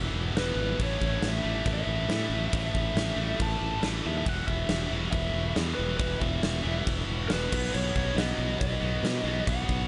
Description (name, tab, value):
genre	hard rock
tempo	138 BPM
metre	4/4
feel	straight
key	unclear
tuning	A4 = 440 Hz
part	high-gain distorted guitar	riff	0.0-9.9 s	E2 to B3	-35 LUFS	equal	distortion
part	modern bright fingered electric bass	bass	0.0-9.8 s	E1 to B2	-34 LUFS	equal	none
part	lead guitar through a small cranked amp	melody	0.4-9.9 s	B4 to A5	-36 LUFS	equal	overdrive
part	huge arena drum kit	drums	0.4-9.8 s	crash cymbal, kick drum, snare drum	-34 LUFS	equal	none
room	little or no reverb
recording	nothing above 10.8 kHz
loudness	-28 LUFS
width	mono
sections	0.0-9.9 A section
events	none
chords	0.0 E; 0.8 A5; 4.3 E5; 7.5 B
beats	0.37 | 0.80 1.23 1.67 2.10 | 2.53 2.96 3.40 3.83 | 4.26 4.70 5.13 5.56 | 6.00 6.43 6.86 7.30 | 7.73 8.16 8.60 9.03 | 9.47